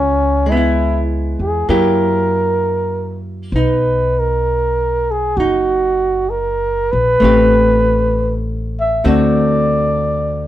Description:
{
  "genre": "jazz ballad",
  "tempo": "65 BPM",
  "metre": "4/4",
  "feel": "swing 69% on 8ths",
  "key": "unclear",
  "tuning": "A4 = 444 Hz",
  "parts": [
    { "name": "mellow flugelhorn", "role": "melody", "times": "0.0-10.5 s", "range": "C#4 to E5", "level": "-16 LUFS", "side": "right 1 dB", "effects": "none" },
    { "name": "upright bass", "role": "bass", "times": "0.0-10.5 s", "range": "F#1 to F#2", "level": "-20 LUFS", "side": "equal", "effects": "none" },
    { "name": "hollow-body jazz guitar", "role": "accompaniment", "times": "0.5-10.5 s", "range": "D3 to B4", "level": "-18 LUFS", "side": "equal", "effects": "none" }
  ],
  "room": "moderate studio reverb, RT60 0.7 s",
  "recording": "band playing live in one room",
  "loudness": "-13 LUFS",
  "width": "side -13 dB against mid",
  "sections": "0.0-10.5 A section",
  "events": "none",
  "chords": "0.0 C#m7; 1.7 F#7b9; 3.5 Bmaj7; 7.2 Am9; 9.0 D7",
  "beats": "0.76 1.68 2.60 | 3.53 4.46 5.37 6.29 | 7.21 8.13 9.04 9.96"
}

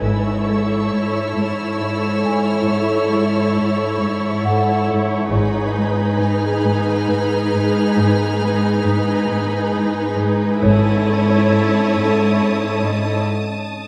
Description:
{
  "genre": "cinematic, suspense film score",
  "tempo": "68 BPM",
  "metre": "3/4",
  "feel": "straight",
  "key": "unclear",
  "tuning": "A4 = 439 Hz",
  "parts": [
    { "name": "warm symphonic violin section", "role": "melody", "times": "0.0-13.3 s", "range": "B4 to C#5", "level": "-30 LUFS", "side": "equal", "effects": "none" },
    { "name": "dark symphonic violin section", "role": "second line", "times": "0.0-13.2 s", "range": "G#4 to A4", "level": "-27 LUFS", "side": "equal", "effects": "none" },
    { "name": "clear symphonic viola section", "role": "accompaniment", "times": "0.0-13.3 s", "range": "D#4 to E4", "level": "-27 LUFS", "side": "equal", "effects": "none" },
    { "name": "flickering grainy texture", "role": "sustained chords", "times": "0.0-13.3 s", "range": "C#4 to C#6", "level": "-27 LUFS", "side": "equal", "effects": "built-in reverb" },
    { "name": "warm symphonic cello section", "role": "riff", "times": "0.0-13.1 s", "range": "G#2 to G#3", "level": "-26 LUFS", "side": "equal", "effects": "none" },
    { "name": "rich studio cello section", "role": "bass", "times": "0.0-13.2 s", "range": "G#2", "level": "-22 LUFS", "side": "equal", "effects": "none" },
    { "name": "warm studio double bass section", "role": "bass", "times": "0.0-0.9, 5.3-6.2, 10.6-11.5 s", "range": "G#1", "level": "-26 LUFS", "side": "equal", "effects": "none" },
    { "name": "rich symphonic violin section", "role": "texture", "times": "0.0-13.9 s", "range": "A5 to E#6", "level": "-34 LUFS", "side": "equal", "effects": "none" },
    { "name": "worn celesta", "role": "texture", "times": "0.0-13.9 s", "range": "D#4 to G#5", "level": "-29 LUFS", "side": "equal", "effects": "none" }
  ],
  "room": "moderate scoring stage reverb, RT60 1.6 s",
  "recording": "none",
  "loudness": "-18 LUFS",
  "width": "mono",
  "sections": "0.0-13.9 A section",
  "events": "break 13.3-13.9",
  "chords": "0.0 A/G#; 5.3 G#m; 10.6 A/G#",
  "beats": "| 0.04 0.92 1.81 | 2.69 3.57 4.45 | 5.34 6.22 7.10 | 7.98 8.87 9.75 | 10.63 11.51 12.39 | 13.28"
}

